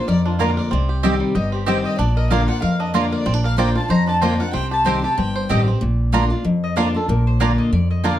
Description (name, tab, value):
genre	bluegrass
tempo	188 BPM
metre	4/4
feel	swing 56% on 8ths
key	unclear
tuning	A4 = 440 Hz
part	bluegrass banjo	melody	0.0-8.1 s	G3 to C5	-28 LUFS	right 4 dB	plate reverb
part	mandolin	melody	0.0-8.2 s	F4 to C6	-26 LUFS	equal	none
part	dark fiddle	second line	0.0-5.6 s	F4 to C6	-30 LUFS	left 4 dB	none
part	picked steel-string acoustic guitar	accompaniment	0.0-8.2 s	F2 to G4	-20 LUFS	left 2 dB	none
part	upright bass	bass	0.1-8.2 s	G1 to F2	-21 LUFS	equal	none
part	mandolin	stabs	0.4-8.1 s	Bb3 to Bb5	-23 LUFS	right 5 dB	slapback echo
room	moderate small room ambience, RT60 0.5 s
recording	dark, warm production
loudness	-16 LUFS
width	side -12 dB against mid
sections	0.0-5.8 A section; 5.8-8.2 B section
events	none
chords	0.0 Bb; 0.7 Cm; 2.0 Bb; 4.5 Cm; 5.8 Bb